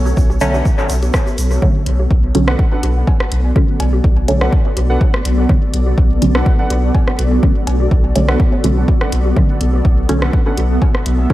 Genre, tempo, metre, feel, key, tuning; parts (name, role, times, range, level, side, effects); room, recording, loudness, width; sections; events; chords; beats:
dub techno; 124 BPM; 4/4; swing 53% on 16ths; B minor; A4 = 441 Hz
granular cloud pad; sustained chords; 0.0-11.3 s; B3 to E5; -21 LUFS; equal; built-in reverb, sidechain pumping
soft dub sub bass; bass; 0.0-11.3 s; B1; -16 LUFS; equal; tube saturation, sidechain pumping
bongos and cowbell; percussion; 0.1-10.9 s; -32 LUFS; equal
tube shaker; percussion; 0.1-1.6 s; -32 LUFS; right 1 dB
electronic kick drum; drums; 0.2-11.3 s; -14 LUFS; equal
filtered dub chord stab; stabs; 0.4-11.3 s; D3 to C#4; -20 LUFS; right 1 dB; chorus, phaser, sidechain pumping, dub echo
punchy analog drum machine; drums; 0.4-11.2 s; hi-hat, rim click; -24 LUFS; equal; dub echo
warbly lo-fi synth keys; riff; 0.5-10.6 s; D4 to F#5; -26 LUFS; right 1 dB; chorus, vintage 12-bit sampler grit, sidechain pumping, dub echo
light reverb; vinyl crackle; -12 LUFS; side -16 dB against mid
0.0-1.6 A section; 1.6-11.3 A section
0.0 Bm7
0.17 0.66 1.14 | 1.62 2.11 2.59 3.08 | 3.56 4.04 4.53 5.01 | 5.49 5.98 6.46 6.95 | 7.43 7.91 8.40 8.88 | 9.37 9.85 10.33 10.82 | 11.30